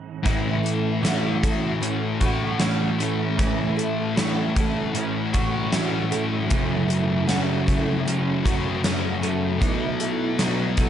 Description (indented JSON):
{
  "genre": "rock, shoegaze and dream pop",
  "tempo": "77 BPM",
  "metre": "4/4",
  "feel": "straight",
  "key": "A major",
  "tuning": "A4 = 440 Hz",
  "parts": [
    { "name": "fingerpicked twelve-string acoustic guitar", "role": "arpeggios", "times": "0.2-10.9 s", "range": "E3 to F#4", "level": "-30 LUFS", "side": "right 3 dB", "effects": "ensemble chorus, slapback echo" },
    { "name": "overdriven semi-hollow guitar", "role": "riff", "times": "0.2-10.9 s", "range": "F#2 to E4", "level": "-27 LUFS", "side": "right 7 dB", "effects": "reverse reverb" },
    { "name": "thick fuzz guitar", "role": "riff", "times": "0.2-10.9 s", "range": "F#2 to B3", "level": "-24 LUFS", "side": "left 5 dB", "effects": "distortion, lush chorus" },
    { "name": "gated 80s drum kit", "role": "drums", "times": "0.3-10.9 s", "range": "hi-hat, kick drum, snare drum", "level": "-25 LUFS", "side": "equal", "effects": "none" }
  ],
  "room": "light reverb, small room ambience",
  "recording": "nothing above 10.9 kHz",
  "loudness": "-21 LUFS",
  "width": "side -10 dB against mid",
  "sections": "0.3-10.9 A section",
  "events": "none",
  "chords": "0.3 A6; 6.5 F#m7; 9.6 B7sus4",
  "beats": "| 0.26 1.04 1.82 2.61 | 3.39 4.17 4.95 5.73 | 6.51 7.29 8.06 8.84 | 9.62 10.39"
}